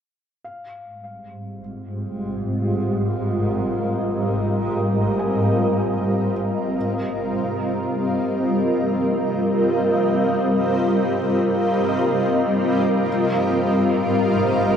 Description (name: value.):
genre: ambient.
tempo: free time.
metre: none.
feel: none.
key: Ab major.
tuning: A4 = 440 Hz.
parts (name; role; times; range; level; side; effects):
granular cloud pad; sustained chords; 1.4-14.8 s; Ab2 to Eb5; -19 LUFS; equal; built-in reverb.
felt-muted upright piano; arpeggios; 0.4-6.8, 11.9-13.1 s; Eb5 to Ab5; -38 LUFS; right 1 dB; none.
room: wet spring reverb, RT60 2.3 s.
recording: echo-heavy mix, cassette tape.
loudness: -18 LUFS.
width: side -8 dB against mid.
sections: 0.4-14.8 A section.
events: none.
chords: 0.4 Abmaj7; 6.8 Eb; 13.1 Abmaj7.